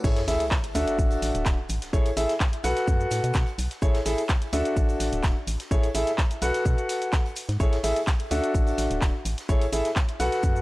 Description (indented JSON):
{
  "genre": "piano house",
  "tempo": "127 BPM",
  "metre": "4/4",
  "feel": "straight",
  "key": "A major",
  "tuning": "A4 = 440 Hz",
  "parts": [
    { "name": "warm concert grand piano", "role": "riff", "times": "0.0-10.6 s", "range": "D4 to F#5", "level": "-27 LUFS", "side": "equal", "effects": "sidechain pumping, tape echo" },
    { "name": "organ-like FM bass", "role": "bass", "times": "0.0-10.6 s", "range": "D1 to B2", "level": "-28 LUFS", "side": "equal", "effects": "sidechain pumping" },
    { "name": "electronic kick drum", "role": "drums", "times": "0.0-10.5 s", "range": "none", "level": "-24 LUFS", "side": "equal", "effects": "small room ambience" },
    { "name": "house drum kit", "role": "drums", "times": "0.0-10.6 s", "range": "crash cymbal, handclaps, hi-hat, shaker", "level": "-32 LUFS", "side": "equal", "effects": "small room ambience" },
    { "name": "oversized low-tuned drum kit", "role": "drums", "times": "0.0-10.6 s", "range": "hi-hat, shaker, snare drum", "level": "-42 LUFS", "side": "right 1 dB", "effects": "high-pass filter on hats, small room ambience, high-pass filter on snare, high-pass filter on perc, high-pass filter on room" },
    { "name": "sub drop", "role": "sound effects", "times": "0.1-1.9 s", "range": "none", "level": "-36 LUFS", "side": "equal", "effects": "none" }
  ],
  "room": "small room ambience",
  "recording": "transformer saturation",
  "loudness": "-22 LUFS",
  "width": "side -20 dB against mid",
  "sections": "0.0-10.6 A section",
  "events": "drop 0.0-10.6; impact 0.0-1.9",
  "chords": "0.0 Amaj7; 0.8 D; 1.7 Amaj7; 2.6 B5; 3.8 Amaj7; 4.5 D; 5.5 Amaj7; 6.4 B5; 7.6 Amaj7; 8.3 D; 9.3 Amaj7",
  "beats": "| 0.04 0.51 0.99 1.46 | 1.93 2.40 2.88 3.35 | 3.82 4.29 4.77 5.24 | 5.71 6.18 6.66 7.13 | 7.60 8.07 8.55 9.02 | 9.49 9.96 10.44"
}